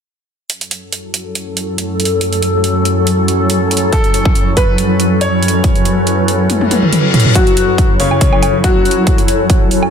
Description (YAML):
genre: heavy wobble dubstep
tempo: 140 BPM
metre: 4/4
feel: swing 54% on 16ths, half-time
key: F# minor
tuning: A4 = 440 Hz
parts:
  - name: evolving wavetable pad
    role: sustained chords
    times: 1.1-9.9 s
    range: F#2 to A4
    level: -17 LUFS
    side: left 1 dB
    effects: chorus, built-in reverb, sidechain pumping
  - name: dubstep drum kit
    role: drums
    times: 0.5-9.9 s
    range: hi-hat, toms, woodblock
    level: -17 LUFS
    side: right 1 dB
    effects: studio reverb
  - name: granular cloud pad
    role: texture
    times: 1.3-9.9 s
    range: F#3 to C#5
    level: -17 LUFS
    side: equal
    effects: built-in reverb, sidechain pumping
  - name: bright grand piano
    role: melody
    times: 3.9-9.9 s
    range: C#3 to C#5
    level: -17 LUFS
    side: left 2 dB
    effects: ping-pong delay
  - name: electronic kick drum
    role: drums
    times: 3.9-9.6 s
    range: none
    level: -13 LUFS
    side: equal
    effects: studio reverb
  - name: reverse cymbal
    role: sound effects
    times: 6.7-7.4 s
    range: none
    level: -20 LUFS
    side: left 6 dB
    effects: none
room: moderate lush hall reverb, RT60 2.2 s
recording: dense, heavily limited modern master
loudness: -11 LUFS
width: side -7 dB against mid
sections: 0.5-7.4 A section; 7.4-9.9 B section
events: filter sweep on ambient pad 0.5-7.4, 7.4-9.9; drum fill 6.5-7.4; reverse cymbal 6.7-7.4; build-up 7.4-9.9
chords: 0.5 F#m